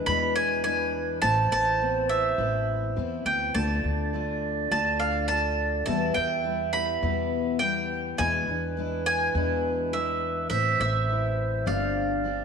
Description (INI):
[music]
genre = acoustic folk duo or small band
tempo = 104 BPM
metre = 4/4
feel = straight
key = unclear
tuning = A4 = 440 Hz
[part]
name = mandolin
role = melody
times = 0.0-12.4 s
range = E5 to B5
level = -27 LUFS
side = right 2 dB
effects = slapback echo
[part]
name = dark clarinet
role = second line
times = 0.0-12.4 s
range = B4 to E5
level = -30 LUFS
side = right 6 dB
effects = none
[part]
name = picked steel-string acoustic guitar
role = accompaniment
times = 0.0-12.4 s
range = E2 to G4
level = -32 LUFS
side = left 10 dB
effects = none
[part]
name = upright bass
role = bass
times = 0.0-12.4 s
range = G1 to E2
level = -31 LUFS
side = equal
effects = none
[sound]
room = moderate echo chamber reverb, RT60 2.0 s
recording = 1960s-style stereo with parts hard left and right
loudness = -24 LUFS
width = side -6 dB against mid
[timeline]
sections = 0.0-12.4 A section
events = none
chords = 0.0 E7; 1.2 Amadd9; 3.5 Dm; 5.9 Em; 8.2 E7; 10.5 Am; 11.7 G7sus4